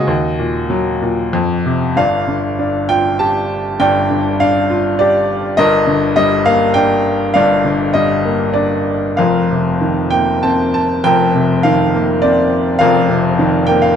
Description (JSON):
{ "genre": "classical, lyrical solo piano", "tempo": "92-106 BPM", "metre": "3/4", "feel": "rubato", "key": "unclear", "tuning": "A4 = 440 Hz", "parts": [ { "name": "bright upright piano", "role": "solo", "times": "0.0-14.0 s", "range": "F1 to A5", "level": "-12 LUFS", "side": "equal", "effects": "none" } ], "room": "moderate recital hall reverb, RT60 1.5 s", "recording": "dark, warm production", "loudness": "-12 LUFS", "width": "side -8 dB against mid", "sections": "0.0-2.0 A section; 2.0-14.0 B section", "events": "none", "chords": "0.1 Ebm; 1.3 F5; 2.0 Dmadd11/G; 5.6 Ebmaj7/G; 9.2 F7sus4" }